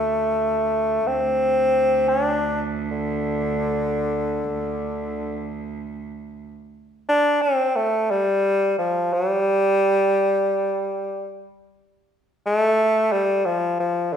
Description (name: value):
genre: mongolian traditional, Mongolian folk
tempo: free time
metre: none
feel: none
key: D yu mode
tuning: A4 = 439 Hz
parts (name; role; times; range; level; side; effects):
- clear bassoon; melody; 0.0-14.2 s; D3 to D4; -20 LUFS; left 1 dB; slapback echo
- rich cello; drone; 0.0-6.5 s; D2; -29 LUFS; right 6 dB; none
room: wet recital hall reverb, RT60 1.5 s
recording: none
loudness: -19 LUFS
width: side -8 dB against mid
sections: 0.0-6.4 A section; 6.4-14.2 B section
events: none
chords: none